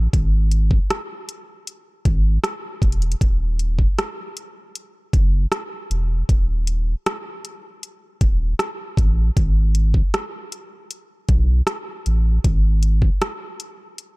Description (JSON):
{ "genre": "contemporary R&B", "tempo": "78 BPM", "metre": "4/4", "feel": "straight", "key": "unclear", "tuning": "A4 = 441 Hz", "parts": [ { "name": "saturated sub bass", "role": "bass", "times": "0.0-13.1 s", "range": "Eb1 to Cb2", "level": "-18 LUFS", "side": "equal", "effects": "none" }, { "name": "smooth R&B drum kit", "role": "drums", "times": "0.1-14.2 s", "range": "hi-hat, kick drum, rim click", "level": "-20 LUFS", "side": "equal", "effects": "none" } ], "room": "little or no reverb", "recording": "dark, warm production", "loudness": "-17 LUFS", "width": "side -24 dB against mid", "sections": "0.0-14.2 A section", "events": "none", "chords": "none", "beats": "| 0.14 0.91 1.67 2.44 | 3.21 3.98 4.75 5.52 | 6.29 7.06 7.83 8.60 | 9.37 10.13 10.90 11.67 | 12.44 13.21 13.98" }